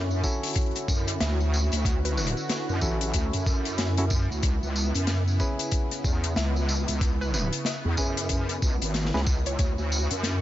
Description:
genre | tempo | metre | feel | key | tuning
glitch hop | 93 BPM | 4/4 | swing 61% on 16ths | C# phrygian | A4 = 440 Hz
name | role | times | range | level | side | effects
warm analog pad | sustained chords | 0.0-10.4 s | C#3 to F#4 | -34 LUFS | right 1 dB | chorus, sidechain pumping
wobble bass | bass | 0.0-10.4 s | G#1 to F#2 | -26 LUFS | equal | chorus, overdrive
deep reggae drum kit | drums | 0.1-10.4 s | hi-hat, rim click, snare drum, tambourine | -31 LUFS | left 2 dB | none
mellow clav | stabs | 0.2-9.2 s | C#4 to B4 | -36 LUFS | equal | vintage 12-bit sampler grit, sidechain pumping, tape echo
electronic kick drum | drums | 0.2-9.7 s | none | -26 LUFS | equal | none
woody wave-folded pluck | melody | 1.2-2.3, 6.4-9.7 s | B4 to E5 | -40 LUFS | equal | chorus, vintage 12-bit sampler grit, tape echo
room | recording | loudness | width
light reverb, small room ambience | nothing above 7.7 kHz | -24 LUFS | side -13 dB against mid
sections
0.0-10.4 A section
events
none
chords
0.0 Dmaj9; 4.4 C#m7; 9.6 Dmaj9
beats
0.56 1.21 | 1.85 2.50 3.14 3.79 | 4.43 5.08 5.72 6.37 | 7.01 7.66 8.30 8.95 | 9.59 10.24

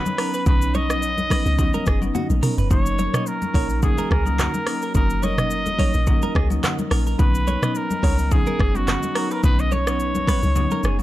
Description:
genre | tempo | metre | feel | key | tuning
afrobeats | 107 BPM | 4/4 | swing 55% on 16ths | unclear | A4 = 440 Hz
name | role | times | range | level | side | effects
warm trumpet | melody | 0.0-11.0 s | F#4 to D#5 | -26 LUFS | equal | analog delay
warm analog pad | sustained chords | 0.0-11.0 s | F#3 to A#4 | -33 LUFS | right 1 dB | chorus, sidechain pumping
direct-recorded clean electric guitar | riff | 0.0-11.0 s | F#4 to D#5 | -31 LUFS | right 5 dB | lush chorus, analog delay
afro-pop drum kit | drums | 0.1-11.0 s | handclaps, hi-hat, kick drum, rim click, shaker, toms | -22 LUFS | equal | none
congas | percussion | 0.1-11.0 s | none | -29 LUFS | left 2 dB | none
marimba with medium mallets | accompaniment | 0.2-11.0 s | F#3 to D#4 | -27 LUFS | left 1 dB | none
deep log drum bass | bass | 0.5-11.0 s | E#1 to C#2 | -23 LUFS | equal | none
room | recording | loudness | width
digital ambience | dry, gritty hardware recording | -18 LUFS | side -15 dB against mid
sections
0.0-11.0 A section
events
drum fill 2.1-2.7; kick muted 10.6-11.0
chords
0.0 Badd9; 2.7 F#6; 7.2 Badd9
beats
| 0.46 1.02 1.58 2.15 | 2.71 3.27 3.83 4.39 | 4.95 5.51 6.07 6.63 | 7.19 7.75 8.31 8.88 | 9.44 10.00 10.56

